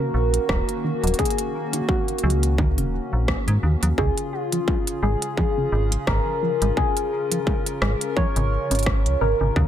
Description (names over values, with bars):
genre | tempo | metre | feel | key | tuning
IDM | 86 BPM | 4/4 | swing 56% on 16ths | unclear | A4 = 440 Hz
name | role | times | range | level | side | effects
soft struck synth lead | melody | 0.0-9.7 s | F4 to Db5 | -26 LUFS | left 1 dB | chorus, phaser, dub echo
hollow soft pad | sustained chords | 0.0-9.7 s | Db3 to Bb4 | -30 LUFS | equal | chorus
deep acid bass | arpeggios | 0.0-9.6 s | Db3 to Db4 | -30 LUFS | right 2 dB | analog chorus, analog delay
metallic FM bass | bass | 0.1-9.7 s | Eb1 to Ab2 | -21 LUFS | equal | none
industrial drum kit | drums | 0.3-9.2 s | hi-hat, rim click | -29 LUFS | equal | none
electronic kick drum | drums | 0.5-9.7 s | none | -24 LUFS | equal | distortion
room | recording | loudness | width
light reverb, digital ambience | echo-heavy mix | -20 LUFS | side -10 dB against mid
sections
0.0-9.7 A section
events
none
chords
0.0 Ebm7; 4.0 Db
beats
0.49 | 1.19 1.89 2.58 3.28 | 3.98 4.68 5.38 6.07 | 6.77 7.47 8.17 8.86 | 9.56